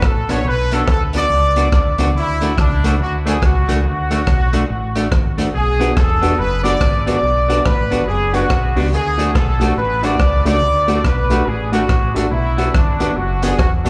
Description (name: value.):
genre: ska.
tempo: 142 BPM.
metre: 4/4.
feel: swing 62% on 8ths.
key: B dorian.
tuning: A4 = 440 Hz.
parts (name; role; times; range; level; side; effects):
clear horn section; melody; 0.0-13.9 s; D4 to D5; -22 LUFS; equal; dub echo, slapback echo.
fingered electric bass; bass; 0.0-13.9 s; E1 to D2; -21 LUFS; equal; none.
crunchy breakbeat drum kit; drums; 0.0-13.9 s; hi-hat, kick drum, rim click; -21 LUFS; equal; none.
semi-hollow electric guitar; accompaniment; 0.3-13.9 s; A3 to F#4; -25 LUFS; equal; dub echo, slapback echo.
warm upright piano; stabs; 5.8-13.9 s; A3 to F#4; -27 LUFS; equal; dub echo.
room: light reverb.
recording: live gig heard through the venue's PA, club reverb.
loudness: -16 LUFS.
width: mono.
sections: 0.0-13.9 A section.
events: none.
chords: 0.0 Bm; 2.1 D; 5.5 Bm; 8.9 D; 12.3 Bm.